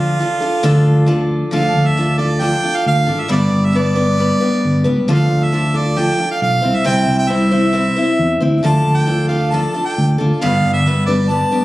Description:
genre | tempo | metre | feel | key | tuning
folk rock and heartland rock | 135 BPM | 4/4 | straight | D dorian | A4 = 440 Hz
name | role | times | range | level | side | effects
clear harmonica | melody | 0.0-11.6 s | F4 to A5 | -19 LUFS | right 2 dB | slapback echo
picked steel-string acoustic guitar | accompaniment | 0.0-11.6 s | G2 to C5 | -16 LUFS | left 1 dB | none
fingered electric bass | bass | 0.6-11.4 s | G1 to E2 | -17 LUFS | equal | none
room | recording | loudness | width
light reverb | recorded on a phone in the room, studio reverb | -13 LUFS | side -17 dB against mid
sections
0.0-1.5 A section; 1.5-11.6 B section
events
none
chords
0.0 Dm; 3.3 G; 5.1 Dm; 6.6 C; 8.6 Dm; 10.4 G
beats
0.21 0.65 1.10 | 1.54 1.98 2.43 2.87 | 3.31 3.76 4.20 4.65 | 5.09 5.54 5.98 6.42 | 6.87 7.31 7.75 8.20 | 8.64 9.09 9.53 9.97 | 10.42 10.86 11.31

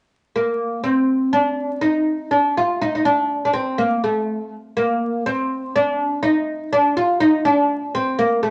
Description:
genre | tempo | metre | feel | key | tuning
turkish | 245 BPM (eighths) | 9/8 | straight | unclear | A4 = 442 Hz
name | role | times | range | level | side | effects
oud | melody | 0.4-8.5 s | A3-30c to F4 | -20 LUFS | equal | none
room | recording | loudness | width
wet studio reverb, RT60 0.6 s | vinyl crackle, nothing above 10.4 kHz | -20 LUFS | mono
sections
0.3-8.5 A section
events
none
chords
none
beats
| 0.34 0.58 0.83 1.07 1.31 1.56 1.80 2.05 2.29 | 2.54 2.78 3.03 3.27 3.52 3.76 4.00 4.25 4.50 | 4.74 4.98 5.23 5.47 5.72 5.96 6.21 6.45 6.70 | 6.94 7.19 7.43 7.68 7.92 8.16 8.41

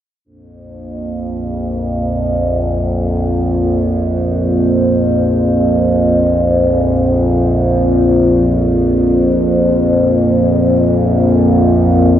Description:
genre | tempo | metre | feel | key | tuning
dark ambient drone | free time | none | none | unclear | A4 = 440 Hz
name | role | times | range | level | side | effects
overtone-sweeping drone | drone | 0.9-12.2 s | Bb1 to F2 | -13 LUFS | left 1 dB | chorus, built-in reverb
dark analog pad | sustained chords | 0.9-12.2 s | Bb3 to C5 | -17 LUFS | right 2 dB | chorus, phaser
room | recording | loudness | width
wet cathedral reverb, RT60 5.5 s | worn, warbling old tape, cassette tape, warbly pitch drift | -11 LUFS | side -10 dB against mid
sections
0.3-12.2 A section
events
none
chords
0.3 Bb5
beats
free time

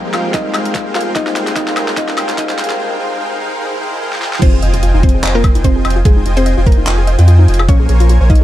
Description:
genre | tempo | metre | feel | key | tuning
future bass | 147 BPM | 4/4 | swing 55% on 16ths, half-time | F minor | A4 = 440 Hz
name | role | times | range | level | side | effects
warm concert grand piano | accompaniment | 0.0-4.4 s | G3 to F4 | -24 LUFS | left 4 dB | vintage 12-bit sampler grit, sidechain pumping, tape echo
rich symphonic string section | sustained chords | 0.0-2.8 s | Db3 to G4 | -30 LUFS | equal | none
dense compressed supersaw | riff | 0.0-8.4 s | Ab3 to Ab5 | -21 LUFS | equal | cassette tape, sidechain pumping, tape echo
riser and impact | sound effects | 0.5-6.1 s | none | -25 LUFS | equal | none
mallet-like synth pluck | melody | 0.1-8.4 s | Ab3 to F5 | -21 LUFS | equal | chorus, sidechain pumping, tape echo
pop drum kit | drums | 0.1-8.4 s | crash cymbal, handclaps, hi-hat, snare drum, woodblock | -21 LUFS | equal | overdrive, high-pass filter on snare, high-pass filter on hats, high-pass filter on perc, high-pass filter on cymbals, high-pass filter on room
electronic kick drum | drums | 0.3-8.4 s | none | -11 LUFS | equal | overdrive
soft round pluck | arpeggios | 4.4-8.4 s | Eb4 to F5 | -23 LUFS | left 4 dB | chorus, sidechain pumping, tape echo
saturated sub bass | bass | 4.4-8.4 s | F1 to F2 | -11 LUFS | equal | sidechain pumping
room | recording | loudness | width
little or no reverb | dark, warm production, high-pass filter | -11 LUFS | side -14 dB against mid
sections
0.0-4.4 A section; 4.4-8.4 B section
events
build-up 0.0-4.4; drum fill 0.0-2.8, 4.1-4.4; filter sweep on synth pluck 0.0-4.4; riser 0.5-4.4; break 2.8-4.4; drop 4.4-8.4; impact 4.4-6.1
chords
0.0 Abmaj13; 1.2 Dbmaj7; 4.4 Fm9; 7.7 Bbm9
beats
0.34 0.75 | 1.16 1.56 1.97 2.38 | 2.79 3.20 3.60 4.01 | 4.42 4.83 5.24 5.64 | 6.05 6.46 6.87 7.28 | 7.69 8.09

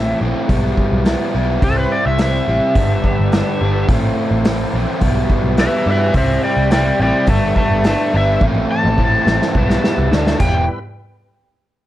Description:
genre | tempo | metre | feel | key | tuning
blues rock power trio and southern rock | 106 BPM | 4/4 | straight | E minor | A4 = 445 Hz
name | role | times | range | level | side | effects
overdriven slide guitar | melody | 0.0-10.7 s | A4 to A5 | -19 LUFS | equal | plate reverb
overdriven semi-hollow guitar | riff | 0.0-10.6 s | G2 to E4 | -18 LUFS | equal | none
vintage muted picked electric bass | bass | 0.0-10.7 s | E1 to G2 | -19 LUFS | equal | none
vintage drum kit | drums | 0.5-10.5 s | crash cymbal, hi-hat, kick drum, snare drum, toms | -19 LUFS | equal | none
overdriven tonewheel organ | sustained chords | 1.6-10.8 s | F#3 to C#5 | -29 LUFS | right 2 dB | none
room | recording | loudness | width
light reverb | none | -13 LUFS | side -14 dB against mid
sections
0.0-10.7 A section; 10.7-11.9 B section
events
drum fill 8.4-10.7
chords
0.0 Am; 0.5 Em/B; 1.6 C; 2.8 G; 3.9 Am; 5.0 Em/B; 6.2 C; 7.3 G; 8.4 Am; 9.6 Em/B; 10.1 D; 10.4 Em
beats
0.50 1.06 | 1.63 2.20 2.76 3.33 | 3.89 4.46 5.02 5.59 | 6.15 6.72 7.29 7.85 | 8.42 8.99 9.55 10.12 | 10.69

